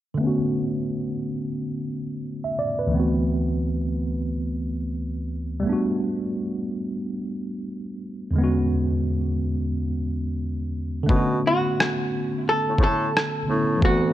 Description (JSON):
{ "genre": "lo-fi hip hop", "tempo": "88 BPM", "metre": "4/4", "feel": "swing 62% on 16ths", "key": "B minor", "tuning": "A4 = 440 Hz", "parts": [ { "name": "tine electric piano", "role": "accompaniment", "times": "0.1-14.1 s", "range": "D2 to E5", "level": "-24 LUFS", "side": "equal", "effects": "overdrive, fast stereo tremolo, cassette tape, low-pass filter" }, { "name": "warm bassoon", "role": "bass", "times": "11.1-14.1 s", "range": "D2 to B2", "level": "-25 LUFS", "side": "equal", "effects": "none" }, { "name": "lo-fi sampler-style drum kit", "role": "drums", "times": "11.1-14.0 s", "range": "kick drum, rim click", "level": "-23 LUFS", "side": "equal", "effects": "overdrive" }, { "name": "archtop guitar, miked and amplified", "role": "melody", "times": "11.5-14.1 s", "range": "F#4 to A4", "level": "-24 LUFS", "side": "equal", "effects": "low-pass filter, analog delay" } ], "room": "light reverb", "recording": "dark, warm production", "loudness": "-22 LUFS", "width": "side -13 dB against mid", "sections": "0.2-11.1 A section; 11.1-14.1 B section", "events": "filter sweep on tine electric piano 0.2-11.1; hi-hats muted 11.1-14.1", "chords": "0.2 Bm9; 2.9 D13; 5.6 Gmaj9; 8.4 E13; 11.1 Bm9" }